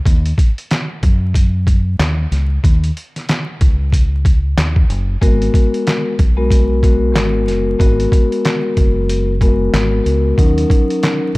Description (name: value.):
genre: hip hop, boom-bap hip-hop.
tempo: 93 BPM.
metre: 4/4.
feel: swing 60% on 16ths.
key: G# minor.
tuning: A4 = 439 Hz.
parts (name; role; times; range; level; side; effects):
deep dub fingered electric bass; bass; 0.1-11.4 s; F#1 to F#2; -16 LUFS; equal; none.
trip hop sampler-style drum kit; drums; 0.1-11.4 s; handclaps, hi-hat, kick drum, snare drum; -14 LUFS; equal; none.
vibraphone with soft mallets; accompaniment; 5.2-11.3 s; F#3 to A#4; -16 LUFS; left 2 dB; high-pass filter, low-pass filter.
room: digital ambience.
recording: dark, warm production, vinyl crackle.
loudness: -12 LUFS.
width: side -22 dB against mid.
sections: 0.0-11.4 A section.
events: none.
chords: 0.1 D#m7; 5.2 G#m9; 10.4 D#m7.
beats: | 0.06 0.70 1.35 1.99 | 2.64 3.28 3.93 4.57 | 5.22 5.86 6.51 7.15 | 7.80 8.44 9.09 9.73 | 10.38 11.02.